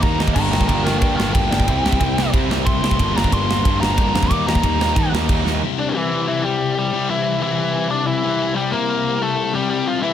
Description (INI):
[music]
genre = punk rock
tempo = 183 BPM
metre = 4/4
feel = straight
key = unclear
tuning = A4 = 441 Hz
[part]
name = biting lead guitar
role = melody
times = 0.0-10.1 s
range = E3 to D6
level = -21 LUFS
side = equal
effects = overdrive, digital delay
[part]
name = biting overdriven guitar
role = riff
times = 0.0-5.6 s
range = G2 to E4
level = -27 LUFS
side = right 1 dB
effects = none
[part]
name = sludgy distorted guitar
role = riff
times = 0.0-10.1 s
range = G2 to E4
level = -23 LUFS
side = left 10 dB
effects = overdrive
[part]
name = tight distorted guitar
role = riff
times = 0.0-5.6 s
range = G2 to E4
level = -26 LUFS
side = right 15 dB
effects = distortion
[part]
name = fuzz picked electric bass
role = bass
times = 0.0-5.6 s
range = G1 to Eb3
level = -23 LUFS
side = right 1 dB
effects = overdrive
[part]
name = tight metal drum kit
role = drums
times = 0.0-5.5 s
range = crash cymbal, kick drum, ride cymbal, snare drum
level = -20 LUFS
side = right 1 dB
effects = none
[sound]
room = little or no reverb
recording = none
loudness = -16 LUFS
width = side -10 dB against mid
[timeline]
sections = 0.0-5.6 A section; 5.6-10.1 B section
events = lead electric guitar solo 0.0-5.6; drum fill 5.5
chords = 0.4 Gm; 1.7 C; 3.0 Gm; 4.3 Eb; 5.6 C